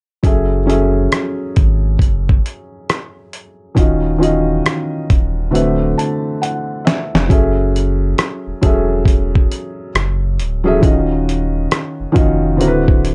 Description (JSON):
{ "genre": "lo-fi hip hop", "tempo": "68 BPM", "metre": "4/4", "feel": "swing 64% on 16ths", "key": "F# dorian", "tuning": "A4 = 440 Hz", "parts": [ { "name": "felt-muted upright piano", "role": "accompaniment", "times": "0.2-13.1 s", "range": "D3 to A5", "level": "-19 LUFS", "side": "equal", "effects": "cassette tape, low-pass filter, plate reverb" }, { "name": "warm sub bass", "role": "bass", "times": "0.2-13.1 s", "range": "D1 to G#1", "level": "-21 LUFS", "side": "equal", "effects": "none" }, { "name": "dusty soul sampler-style drum kit", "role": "drums", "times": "0.2-13.1 s", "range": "hi-hat, kick drum, rim click, snare drum", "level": "-16 LUFS", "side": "equal", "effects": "none" } ], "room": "light reverb", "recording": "cassette tape", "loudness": "-16 LUFS", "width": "mono", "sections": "0.2-7.3 A section; 7.3-13.1 B section", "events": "drum fill 5.5-7.3; felt piano fill 5.5-7.3", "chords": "0.2 F#m7; 3.8 D#m9; 5.5 D13; 7.3 F#m7; 10.8 D#m9; 12.6 D13" }